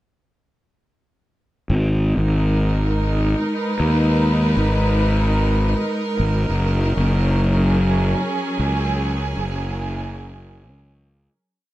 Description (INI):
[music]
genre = ambient dub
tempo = 100 BPM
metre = 4/4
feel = swing 58% on 16ths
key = G# minor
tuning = A4 = 440 Hz
[part]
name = warm studio string section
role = sustained chords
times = 1.7-11.3 s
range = F#3 to B4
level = -22 LUFS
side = right 1 dB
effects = none
[part]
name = fuzz fingered electric bass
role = bass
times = 1.7-11.3 s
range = F#1 to D#2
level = -19 LUFS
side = equal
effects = overdrive
[sound]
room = light reverb, small room ambience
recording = none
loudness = -17 LUFS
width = side -16 dB against mid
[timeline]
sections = 1.7-11.3 groove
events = fade-out 8.1-11.3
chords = 1.7 G#madd9; 6.5 F#